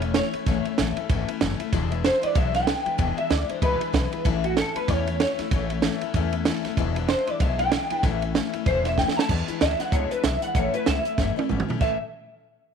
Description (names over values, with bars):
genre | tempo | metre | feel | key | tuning
rockabilly | 190 BPM | 4/4 | swing 59% on 8ths | A major | A4 = 441 Hz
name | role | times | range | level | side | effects
electric guitar through a small old amp | melody | 0.0-12.0 s | F#4 to A5 | -26 LUFS | equal | ensemble chorus, tape echo
picked steel-string acoustic guitar | accompaniment | 0.0-12.0 s | E2 to E4 | -29 LUFS | left 15 dB | none
upright bass | bass | 0.0-12.0 s | E1 to E2 | -27 LUFS | equal | none
compact cocktail drum kit | drums | 0.0-11.9 s | crash cymbal, hi-hat, kick drum, ride cymbal, snare drum, toms | -26 LUFS | right 4 dB | none
room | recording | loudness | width
light reverb, studio ambience | 1960s-style stereo | -22 LUFS | side -7 dB against mid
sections
0.0-9.3 A section; 9.3-11.8 B section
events
drum fill 9.0-9.3, 11.2-11.8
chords
0.0 A; 1.7 E7; 4.3 A; 6.8 E7; 8.0 A; 9.3 E7; 10.6 A